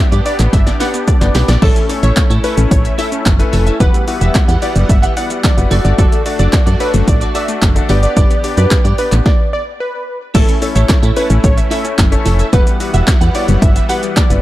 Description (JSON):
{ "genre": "dance-pop", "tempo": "110 BPM", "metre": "4/4", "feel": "straight", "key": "unclear", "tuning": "A4 = 440 Hz", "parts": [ { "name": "plucky unison lead", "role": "melody", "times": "0.0-14.4 s", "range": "A4 to F#5", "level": "-22 LUFS", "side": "equal", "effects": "digital delay" }, { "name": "clear baby grand piano", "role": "accompaniment", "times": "0.0-14.4 s", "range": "A3 to E5", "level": "-22 LUFS", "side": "left 4 dB", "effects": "sidechain pumping" }, { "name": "filtered supersaw swell", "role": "sustained chords", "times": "0.0-14.4 s", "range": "E3 to F#5", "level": "-25 LUFS", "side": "equal", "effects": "sidechain pumping" }, { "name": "analog pluck", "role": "arpeggios", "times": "0.0-14.2 s", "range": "D3 to E5", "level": "-25 LUFS", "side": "left 2 dB", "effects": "chorus, sidechain pumping, digital delay" }, { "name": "clean electric guitar", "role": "riff", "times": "0.0-14.3 s", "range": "E4 to F#5", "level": "-24 LUFS", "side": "right 6 dB", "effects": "ensemble chorus" }, { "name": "solid FM bass", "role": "bass", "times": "0.0-14.4 s", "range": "E1 to A2", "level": "-13 LUFS", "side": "equal", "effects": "sidechain pumping" }, { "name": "punchy analog drum machine", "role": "drums", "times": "0.1-14.4 s", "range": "crash cymbal, handclaps, hi-hat, kick drum, shaker, snare drum", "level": "-12 LUFS", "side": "equal", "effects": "none" } ], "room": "digital ambience", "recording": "dark, warm production", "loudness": "-10 LUFS", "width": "side -15 dB against mid", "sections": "0.0-10.3 A section; 10.3-14.4 A section", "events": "drop 0.0-10.3, 10.3-14.4; drum fill 0.5-1.6; stop 9.3-10.3", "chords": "0.0 G; 1.6 A; 3.8 Emadd9; 5.7 D/F#; 7.9 G; 10.3 A; 12.5 Emadd9", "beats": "0.53 1.08 | 1.62 2.17 2.71 3.26 | 3.80 4.35 4.89 5.44 | 5.99 6.53 7.08 7.62 | 8.17 8.71 9.26 9.80 | 10.35 10.89 11.44 11.98 | 12.53 13.08 13.62 14.17" }